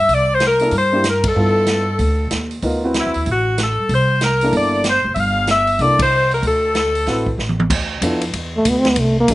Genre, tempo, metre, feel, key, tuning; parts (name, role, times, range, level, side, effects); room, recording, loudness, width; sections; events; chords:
jazz, big band swing; 189 BPM; 4/4; swing 63% on 8ths; A4 = 440 Hz
bright saxophone section; melody; 0.0-7.4 s; E4 to F5; -16 LUFS; left 1 dB; slapback echo
upright bass; bass; 0.0-9.3 s; F1 to G2; -20 LUFS; equal
swinging big-band drum kit; drums; 0.1-9.3 s; crash cymbal, hi-hat, kick drum, ride cymbal, snare drum, toms; -23 LUFS; right 1 dB
warm upright piano; accompaniment; 0.6-9.3 s; Bb3 to B4; -21 LUFS; equal; slapback echo
breathy trombone; melody; 8.6-9.3 s; A3 to C4; -15 LUFS; equal
little or no reverb; recorded outdoors, with no room sound, nothing above 11.0 kHz; -14 LUFS; side -17 dB against mid
0.0-7.7 A section; 7.7-9.3 B section
band accent 1.2, 6.0; drum fill 7.4-7.7; trombone solo 7.7-9.3
0.0 C9; 1.4 G13; 2.6 D13; 3.9 C13; 5.2 Em/G; 5.8 C13; 6.4 D13; 7.7 Dm69